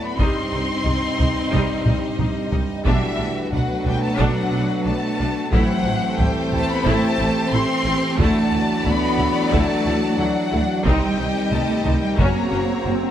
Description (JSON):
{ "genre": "cinematic, hybrid orchestral and electronic film score", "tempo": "90 BPM", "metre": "4/4", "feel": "straight", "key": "unclear", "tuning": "A4 = 443 Hz", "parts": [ { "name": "dark symphonic violin section", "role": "melody", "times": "0.0-13.1 s", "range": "E5 to C6", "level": "-27 LUFS", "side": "left 3 dB", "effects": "none" }, { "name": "rich symphonic violin section", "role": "second line", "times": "0.0-13.1 s", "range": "Eb4 to Eb5", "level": "-28 LUFS", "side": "left 3 dB", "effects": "none" }, { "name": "clear trombone section", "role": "sustained chords", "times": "0.0-13.1 s", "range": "G2 to A3", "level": "-28 LUFS", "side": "right 2 dB", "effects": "none" }, { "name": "warm French horn section", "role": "sustained chords", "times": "0.0-13.1 s", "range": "A3 to F#4", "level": "-27 LUFS", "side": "left 4 dB", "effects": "none" }, { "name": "rich symphonic cello section", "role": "bass", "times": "0.0-13.1 s", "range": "E3 to C4", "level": "-26 LUFS", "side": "right 3 dB", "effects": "none" }, { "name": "clear symphonic viola section", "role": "accompaniment", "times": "0.2-12.9 s", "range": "G3 to F#4", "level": "-27 LUFS", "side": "equal", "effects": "none" }, { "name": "clear studio double bass section", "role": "bass", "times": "0.2-12.9 s", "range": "F#1 to D2", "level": "-25 LUFS", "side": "right 2 dB", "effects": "none" }, { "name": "taiko ensemble", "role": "drums", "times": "0.2-12.8 s", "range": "none", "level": "-24 LUFS", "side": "equal", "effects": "none" }, { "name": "swell", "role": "sound effects", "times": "12.0-13.1 s", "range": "none", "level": "-29 LUFS", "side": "right 2 dB", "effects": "none" } ], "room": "moderate scoring stage reverb, RT60 1.5 s", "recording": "none", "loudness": "-18 LUFS", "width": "side -10 dB against mid", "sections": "0.0-13.1 A section", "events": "drum fill 1.9-2.9; swell 12.0-13.1", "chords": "0.2 Cm; 2.9 Bm7; 5.5 Am7; 8.2 Dadd9; 10.9 Cm; 12.2 F#" }